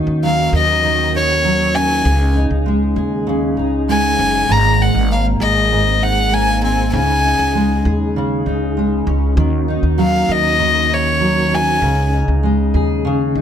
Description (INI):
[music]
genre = pop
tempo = 98 BPM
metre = 4/4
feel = straight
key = unclear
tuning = A4 = 440 Hz
[part]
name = fingerpicked steel-string acoustic guitar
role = accompaniment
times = 0.0-13.4 s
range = Ab2 to Bb4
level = -18 LUFS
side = equal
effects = double-tracked left and right
[part]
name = mellow tonewheel organ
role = sustained chords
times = 0.0-13.4 s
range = Db3 to Ab4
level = -24 LUFS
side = equal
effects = fast rotary speaker
[part]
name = upright bass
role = bass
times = 0.0-13.4 s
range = Gb1 to Eb2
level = -19 LUFS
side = equal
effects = none
[part]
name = warm violin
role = melody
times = 0.2-12.1 s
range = Db5 to Bb5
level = -16 LUFS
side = left 2 dB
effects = none
[sound]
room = light reverb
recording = none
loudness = -13 LUFS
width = side -9 dB against mid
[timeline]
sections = 0.0-13.4 A section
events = none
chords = 0.0 Ebm7; 2.1 Dbsus2; 4.5 Abadd9; 6.9 Dbsus2; 9.4 Ebm7; 11.8 Dbsus2